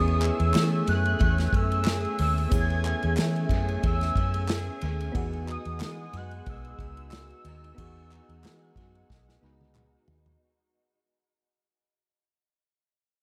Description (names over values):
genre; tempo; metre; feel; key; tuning
indie pop, bedroom pop; 91 BPM; 4/4; swing 55% on 16ths; E major; A4 = 436 Hz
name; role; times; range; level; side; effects
warm velvety synth lead; melody; 0.0-9.7 s; D#6 to G#6; -35 LUFS; equal; analog chorus, dub echo
picked steel-string acoustic guitar; accompaniment; 0.0-11.0 s; G#3 to G#4; -38 LUFS; equal; ensemble chorus, warbly pitch drift, dub echo
soft electric-piano-like synth keys; accompaniment; 0.0-10.4 s; B3 to B4; -39 LUFS; equal; chorus, dub echo
mellow brass ensemble; sustained chords; 0.0-10.4 s; A3 to G#5; -42 LUFS; equal; none
vintage muted fingered electric bass; bass; 0.0-10.3 s; B1 to E3; -30 LUFS; equal; none
unplugged drum kit; drums; 0.1-10.4 s; hi-hat, kick drum, ride cymbal, snare drum, toms; -32 LUFS; equal; dub echo
group handclap; percussion; 0.2-9.9 s; none; -41 LUFS; equal; none
room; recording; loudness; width
small room ambience; echo-heavy mix; -26 LUFS; mono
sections
0.0-10.4 A section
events
fade-out 0.0-10.4; drum fill 9.1-10.4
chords
0.0 Amaj7; 5.1 Emaj9